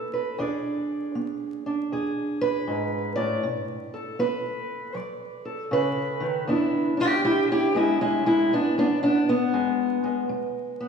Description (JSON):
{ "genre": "acoustic country blues, solo or duo", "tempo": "79 BPM", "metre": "4/4", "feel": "swing 65% on 8ths", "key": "E mixolydian", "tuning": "A4 = 439 Hz", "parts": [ { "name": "fingerpicked steel-string acoustic guitar", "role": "solo", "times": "0.0-10.9 s", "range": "E2 to D5", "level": "-23 LUFS", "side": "equal", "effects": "none" } ], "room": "wet concert hall reverb, RT60 2.2 s", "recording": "recorded in a church or concert hall, vinyl crackle, studio reverb", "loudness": "-22 LUFS", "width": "side -6 dB against mid", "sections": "0.0-6.5 A section; 6.5-10.9 B section", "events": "steel-string acoustic guitar solo 6.5-10.9", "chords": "0.4 E7; 3.4 B7(no3); 6.5 E7", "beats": "| 0.39 1.15 1.91 2.67 | 3.44 4.20 4.96 5.72 | 6.48 7.25 8.01 8.78 | 9.54 10.30" }